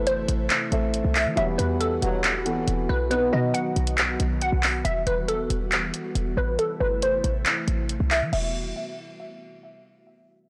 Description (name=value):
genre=hip hop, trap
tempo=138 BPM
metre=4/4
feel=half-time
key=E harmonic minor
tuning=A4 = 440 Hz
part: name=glassy wavetable pluck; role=melody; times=0.0-8.5 s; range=A4 to F#5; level=-30 LUFS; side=equal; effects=chorus, low-pass filter, tape echo
part: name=dark concert grand piano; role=accompaniment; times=0.0-4.9 s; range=B2 to E5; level=-31 LUFS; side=equal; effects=low-pass filter
part: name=airy breathy pad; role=sustained chords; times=0.0-8.5 s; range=C3 to F#4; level=-36 LUFS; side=equal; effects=chorus, low-pass filter
part: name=short 808-style bass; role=bass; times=0.0-8.7 s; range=E1 to E3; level=-29 LUFS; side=equal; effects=none
part: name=trap drum kit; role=drums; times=0.1-8.4 s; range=crash cymbal, handclaps, hi-hat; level=-28 LUFS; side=equal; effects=vintage 12-bit sampler grit
part: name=clear brass ensemble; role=stabs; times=1.4-2.3 s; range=G2 to F#3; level=-36 LUFS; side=equal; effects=tape echo
room=light reverb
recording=blown-out, overdriven recording, overdrive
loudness=-24 LUFS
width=mono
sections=0.0-4.8 A section; 4.8-8.3 B section; 8.3-10.1 C section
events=filter sweep 4.8-8.3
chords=0.0 Am; 1.4 Emadd9; 3.1 B; 4.8 Emadd9; 6.6 Am; 8.3 Emadd9